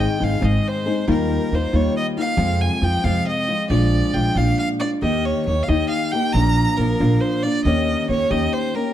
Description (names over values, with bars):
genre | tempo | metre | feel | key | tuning
mexican folk, mariachi | 91 BPM (dotted quarters) | 6/8 | straight | unclear | A4 = 440 Hz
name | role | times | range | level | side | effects
clear violin | melody | 0.0-8.9 s | Bb4 to Bb5 | -23 LUFS | right 1 dB | none
nylon-string guitar | accompaniment | 0.0-8.9 s | F2 to Ab4 | -21 LUFS | left 2 dB | none
upright bass | bass | 0.0-8.5 s | Ab1 to F2 | -21 LUFS | right 1 dB | none
room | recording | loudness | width
moderate recital hall reverb, RT60 1.5 s | dark, warm production | -17 LUFS | side -11 dB against mid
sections
0.0-8.9 A section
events
none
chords
0.0 Ab; 1.1 Ebadd9; 2.4 Fm; 3.7 Bb7; 5.0 Eb; 6.3 Bb; 7.7 Eb7